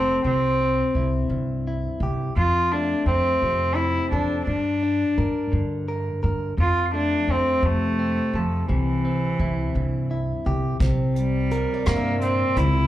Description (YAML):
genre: acoustic folk-pop ballad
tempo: 57 BPM (dotted quarters)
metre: 6/8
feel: straight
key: unclear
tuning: A4 = 440 Hz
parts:
  - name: warm cello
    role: melody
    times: 0.0-12.9 s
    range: E3 to F4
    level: -23 LUFS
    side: equal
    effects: plate reverb, slapback echo
  - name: direct-recorded clean electric guitar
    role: accompaniment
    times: 0.0-12.9 s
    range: F2 to Bb4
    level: -28 LUFS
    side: left 2 dB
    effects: plate reverb, slapback echo
  - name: upright bass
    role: bass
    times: 0.0-12.8 s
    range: F1 to G2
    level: -24 LUFS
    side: equal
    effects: none
  - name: vintage brush drum kit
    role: drums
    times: 10.8-12.7 s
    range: hi-hat, kick drum, rim click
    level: -26 LUFS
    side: equal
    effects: none
  - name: picked steel-string acoustic guitar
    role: arpeggios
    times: 11.5-12.9 s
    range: Bb4 to E5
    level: -31 LUFS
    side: right 4 dB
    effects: plate reverb, slapback echo
room: moderate club reverb, RT60 0.6 s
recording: live gig heard through the venue's PA, club reverb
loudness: -20 LUFS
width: side -13 dB against mid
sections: 0.0-10.8 A section; 10.8-12.9 B section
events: none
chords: 0.3 C; 2.4 F; 4.5 Gm; 6.6 F; 8.7 C; 10.8 C7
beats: | 0.25 1.31 | 2.37 3.42 | 4.47 5.52 | 6.57 7.63 | 8.68 9.74 | 10.80 11.86